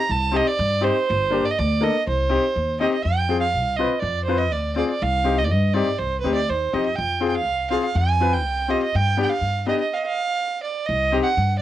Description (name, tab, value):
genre	klezmer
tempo	122 BPM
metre	2/4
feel	straight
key	C minor, F dorian sharp4 from 3.0 s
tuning	A4 = 444 Hz
part	warm violin	melody	0.0-11.6 s	B4 to Bb5	-22 LUFS	right 4 dB	cassette tape
part	upright bass	bass	0.1-11.6 s	G1 to G2	-24 LUFS	left 1 dB	none
part	bright upright piano	accompaniment	0.3-11.3 s	Bb3 to B4	-23 LUFS	left 6 dB	cassette tape
room	moderate studio reverb, RT60 0.5 s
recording	home recording on cassette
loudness	-19 LUFS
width	side -12 dB against mid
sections	0.0-3.0 A section; 3.0-10.9 B section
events	stop 9.9-10.9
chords	0.0 Cm; 1.1 Gm; 2.1 Cm; 3.0 F5; 5.0 Cm; 7.0 F5; 8.9 G; 9.9 N.C.; 10.9 Cm